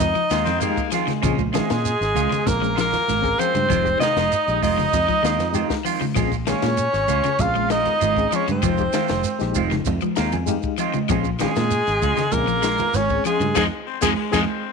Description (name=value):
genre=afrobeat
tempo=97 BPM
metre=4/4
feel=straight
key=Bb dorian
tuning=A4 = 441 Hz
part: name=clear alto saxophone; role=melody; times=0.0-14.4 s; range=Ab4 to F5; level=-23 LUFS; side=left 3 dB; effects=none
part: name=trombone with straight mute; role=second line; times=0.0-14.4 s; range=Ab3 to F4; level=-26 LUFS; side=right 14 dB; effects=none
part: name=bright reed electric piano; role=accompaniment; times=0.0-14.4 s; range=Ab3 to Bb5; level=-29 LUFS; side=left 15 dB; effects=fast tremolo
part: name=electric guitar at the edge of break-up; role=arpeggios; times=0.0-14.4 s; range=C3 to Ab3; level=-27 LUFS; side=left 15 dB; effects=spring reverb
part: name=fingered electric bass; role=bass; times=0.0-14.4 s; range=F1 to Bb2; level=-26 LUFS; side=equal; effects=none
part: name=compact cocktail drum kit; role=drums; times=0.0-14.5 s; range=hi-hat, kick drum, ride cymbal, snare drum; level=-29 LUFS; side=left 4 dB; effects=none
part: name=congas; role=percussion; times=0.0-14.5 s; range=none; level=-28 LUFS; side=right 15 dB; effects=none
part: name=shekere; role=percussion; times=0.0-14.5 s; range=none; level=-31 LUFS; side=right 7 dB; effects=none
part: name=raspy baritone saxophone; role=second line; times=0.3-1.4, 13.9-14.7 s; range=Ab3 to C4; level=-29 LUFS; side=left 13 dB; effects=none
part: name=semi-hollow electric guitar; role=stabs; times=0.3-14.4 s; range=Eb3 to F4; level=-28 LUFS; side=right 14 dB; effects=analog chorus
room=light reverb, small room ambience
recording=1960s-style stereo with parts hard left and right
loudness=-18 LUFS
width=side -5 dB against mid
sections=0.0-14.7 A section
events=reed electric piano fill 9.9-11.1; band accent 13.6-14.7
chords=0.0 Fm7; 1.2 Bbm7; 3.7 Fm7; 6.2 Bbm7; 8.6 Fm7; 11.1 Bbm7; 13.6 Fm7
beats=0.00 0.62 | 1.24 1.85 2.47 3.08 | 3.70 4.32 4.93 5.55 | 6.17 6.78 7.40 8.02 | 8.63 9.25 9.86 10.48 | 11.10 11.71 12.33 12.95 | 13.56 14.18